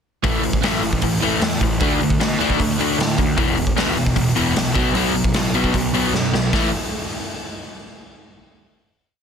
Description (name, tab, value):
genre	punk rock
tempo	152 BPM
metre	4/4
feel	straight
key	unclear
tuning	A4 = 442 Hz
part	overdriven electric guitar	riff	0.2-6.7 s	E2 to D4	-21 LUFS	left 11 dB	none
part	overdriven semi-hollow guitar	riff	0.2-6.7 s	E2 to D4	-23 LUFS	right 12 dB	none
part	fuzz picked electric bass	bass	0.2-6.7 s	E1 to B2	-26 LUFS	equal	overdrive
part	raw garage drum kit	drums	0.2-6.6 s	hi-hat, kick drum, snare drum	-22 LUFS	equal	none
room	light reverb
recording	dense, heavily limited modern master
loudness	-17 LUFS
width	side -7 dB against mid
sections	0.2-6.5 verse; 6.5-8.1 final chord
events	drum fill 6.1-6.5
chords	0.2 A5; 1.8 D5; 3.4 E5; 4.8 B5; 6.5 A5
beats	| 0.24 0.63 1.02 1.42 | 1.81 2.20 2.59 2.98 | 3.38 3.77 4.17 4.56 | 4.95 5.35 5.74 6.14 | 6.54